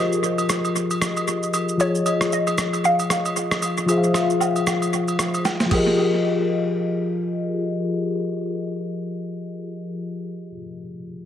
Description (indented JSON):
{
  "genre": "amapiano",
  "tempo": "115 BPM",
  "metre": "4/4",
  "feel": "swing 58% on 16ths",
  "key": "F minor",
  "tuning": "A4 = 440 Hz",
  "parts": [
    { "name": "hollow square pluck", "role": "melody", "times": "0.0-5.4 s", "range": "C5 to F5", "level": "-25 LUFS", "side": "equal", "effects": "chorus, low-pass filter, analog delay" },
    { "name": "mellow tine electric piano", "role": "accompaniment", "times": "0.0-11.3 s", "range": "F3 to F5", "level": "-22 LUFS", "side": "left 2 dB", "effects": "phaser, low-pass filter, analog delay" },
    { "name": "dusty soul sampler-style drum kit", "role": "drums", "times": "0.1-5.9 s", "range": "crash cymbal, kick drum, rim click, shaker, snare drum", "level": "-25 LUFS", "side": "right 1 dB", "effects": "analog delay" },
    { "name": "agogo bells and woodblock", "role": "percussion", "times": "0.4-6.2 s", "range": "none", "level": "-28 LUFS", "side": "right 3 dB", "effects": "analog delay" }
  ],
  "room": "wet spring reverb, RT60 1.7 s, digital ambience",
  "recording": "echo-heavy mix",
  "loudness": "-20 LUFS",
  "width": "side -10 dB against mid",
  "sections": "0.0-6.0 A section; 6.0-10.1 B section",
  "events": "filter sweep 0.0-6.0; drum fill 5.5-6.0",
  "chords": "0.0 Fm11; 1.8 Dbmaj9/F; 5.7 Fm11",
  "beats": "0.23 0.76 1.28 | 1.80 2.32 2.84 3.36 | 3.88 4.41 4.93 5.45 | 5.97 6.49 7.02 7.54 | 8.06 8.58 9.10 9.62"
}